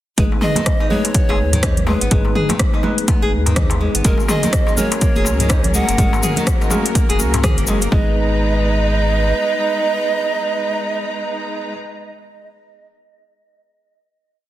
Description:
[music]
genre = afro house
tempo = 124 BPM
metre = 4/4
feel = swing 60% on 16ths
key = G# minor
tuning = A4 = 440 Hz
[part]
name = mellow pan flute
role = melody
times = 0.2-11.7 s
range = A#4 to F#5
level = -22 LUFS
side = right 3 dB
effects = dub echo
[part]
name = nylon-string guitar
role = arpeggios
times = 0.2-8.1 s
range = D#3 to G#4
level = -24 LUFS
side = left 1 dB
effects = sidechain pumping, dub echo
[part]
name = tine electric piano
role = stabs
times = 0.2-11.7 s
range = G#3 to B4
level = -25 LUFS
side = left 2 dB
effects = medium stereo tremolo, sidechain pumping, low-pass filter, dub echo
[part]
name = warm sub bass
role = bass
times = 0.2-9.3 s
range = E1 to D#2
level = -20 LUFS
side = equal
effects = sidechain pumping
[part]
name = electronic kick drum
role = drums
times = 0.2-8.0 s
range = none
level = -17 LUFS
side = equal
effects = overdrive
[part]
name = house drum kit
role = drums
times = 0.2-7.9 s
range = hi-hat, rim click, toms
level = -22 LUFS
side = equal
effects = overdrive
[part]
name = congas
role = percussion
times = 0.2-7.1 s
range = none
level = -26 LUFS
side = right 2 dB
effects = none
[part]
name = darbuka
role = percussion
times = 0.3-7.8 s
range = none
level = -27 LUFS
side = left 2 dB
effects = none
[part]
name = rich studio string section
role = sustained chords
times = 4.0-11.7 s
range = F#3 to A#5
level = -25 LUFS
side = right 1 dB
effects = sidechain pumping
[part]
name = cabasa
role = percussion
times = 4.0-7.9 s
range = none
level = -26 LUFS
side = left 4 dB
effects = none
[sound]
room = light reverb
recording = dense, heavily limited modern master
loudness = -14 LUFS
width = side -14 dB against mid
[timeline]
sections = 0.2-7.9 groove; 7.9-11.8 final chord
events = filter sweep on tine electric piano 0.2-7.9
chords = 0.2 G#m; 4.0 F#add9; 7.9 G#m

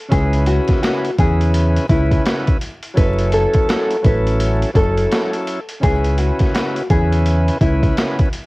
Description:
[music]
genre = hip hop, boom-bap hip-hop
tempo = 84 BPM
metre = 4/4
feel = swing 60% on 16ths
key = unclear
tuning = A4 = 438 Hz
[part]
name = nylon-string guitar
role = melody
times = 0.1-7.9 s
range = E4 to B4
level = -21 LUFS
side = left 1 dB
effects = high-pass filter, low-pass filter, analog delay
[part]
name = bright tonewheel organ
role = accompaniment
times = 0.1-8.3 s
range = C#3 to B4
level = -22 LUFS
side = equal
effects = overdrive, slow rotary speaker, cassette tape, high-pass filter, low-pass filter
[part]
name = deep dub fingered electric bass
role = bass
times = 0.1-7.9 s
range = F#1 to E2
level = -16 LUFS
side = equal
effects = none
[part]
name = boom bap sampler-style drum kit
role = drums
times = 0.1-8.5 s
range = hi-hat, kick drum, snare drum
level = -18 LUFS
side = equal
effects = vintage 12-bit sampler grit, cassette tape
[sound]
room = little or no reverb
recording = home recording on cassette, vinyl crackle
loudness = -14 LUFS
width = side -22 dB against mid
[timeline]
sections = 0.0-8.5 A section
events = none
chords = 0.1 C#m7; 3.0 F#m7; 5.8 C#m7

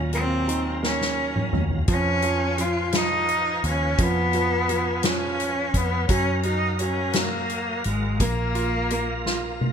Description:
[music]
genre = six-eight pop ballad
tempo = 57 BPM (dotted quarters)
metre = 6/8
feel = straight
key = unclear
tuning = A4 = 441 Hz
[part]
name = bright upright piano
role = accompaniment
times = 0.0-9.7 s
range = Bb2 to F4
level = -30 LUFS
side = right 3 dB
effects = none
[part]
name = tonewheel organ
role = sustained chords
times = 0.0-9.7 s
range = Gb3 to Bb5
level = -33 LUFS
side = equal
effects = overdrive, chorus vibrato, slow rotary speaker
[part]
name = vintage muted fingered electric bass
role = bass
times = 0.0-9.7 s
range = Ab1 to Gb2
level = -28 LUFS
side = equal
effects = none
[part]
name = rich cello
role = melody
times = 0.1-9.6 s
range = Ab3 to F4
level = -25 LUFS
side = left 1 dB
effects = none
[part]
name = soft-mallet drum kit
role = drums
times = 0.1-9.7 s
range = hi-hat, kick drum, snare drum, toms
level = -26 LUFS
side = left 1 dB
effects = gated reverb
[sound]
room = light reverb, studio ambience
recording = bright 1980s-style digital production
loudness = -21 LUFS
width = side -7 dB against mid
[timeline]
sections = 0.0-9.7 A section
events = drum fill 0.8-1.9, 9.3-9.7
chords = 0.0 Ebm7; 1.9 Db7; 6.1 Gb; 8.2 Bb5

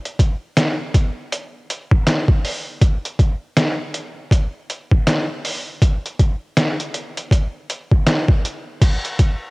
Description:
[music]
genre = hip hop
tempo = 80 BPM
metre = 4/4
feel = swing 62% on 16ths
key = none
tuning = none
[part]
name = trip hop sampler-style drum kit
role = drums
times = 0.1-9.4 s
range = crash cymbal, hi-hat, kick drum, snare drum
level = -16 LUFS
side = equal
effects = overdrive, cassette tape
[sound]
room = little or no reverb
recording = home recording on cassette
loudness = -17 LUFS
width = side -26 dB against mid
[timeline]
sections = 0.0-8.8 A section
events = none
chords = none

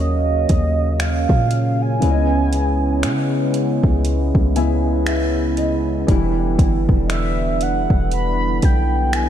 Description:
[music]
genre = contemporary R&B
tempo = 59 BPM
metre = 4/4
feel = swing 58% on 16ths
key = unclear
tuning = A4 = 439 Hz
[part]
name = mellow horn-like synth lead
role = melody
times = 0.0-9.3 s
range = Eb5 to B5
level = -24 LUFS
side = right 3 dB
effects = chorus, phaser, tape echo
[part]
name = warm grand piano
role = accompaniment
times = 0.0-9.3 s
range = Db3 to Ab5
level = -26 LUFS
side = left 3 dB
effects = lush chorus
[part]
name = warm analog pad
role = sustained chords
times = 0.0-9.3 s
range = Db3 to F5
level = -22 LUFS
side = right 1 dB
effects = chorus
[part]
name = warm 808-style bass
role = bass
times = 0.0-9.3 s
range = E1 to Db3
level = -20 LUFS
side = equal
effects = none
[part]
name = impact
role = sound effects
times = 0.0-2.0 s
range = none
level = barely audible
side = none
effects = none
[part]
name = smooth R&B drum kit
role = drums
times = 0.5-9.3 s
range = finger snaps, hi-hat, kick drum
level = -20 LUFS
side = equal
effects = none
[sound]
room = light reverb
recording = none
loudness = -16 LUFS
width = side -10 dB against mid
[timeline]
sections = 0.0-9.3 A section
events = impact 0.0-2.0; grand piano fill 4.0-6.1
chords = 0.0 Ebm9; 2.0 Dbm9; 6.1 Em7

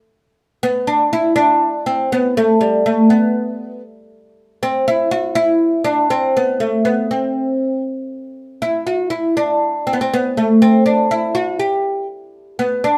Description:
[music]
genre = arabic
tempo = 120 BPM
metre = 4/4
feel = straight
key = E maqam bayati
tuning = A4 = 444 Hz
[part]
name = oud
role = solo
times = 0.6-13.0 s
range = G3 to G4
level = -17 LUFS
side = equal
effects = none
[sound]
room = moderate studio reverb, RT60 0.7 s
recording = band playing live in one room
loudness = -17 LUFS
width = mono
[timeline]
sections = 0.1-13.0 A section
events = none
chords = none

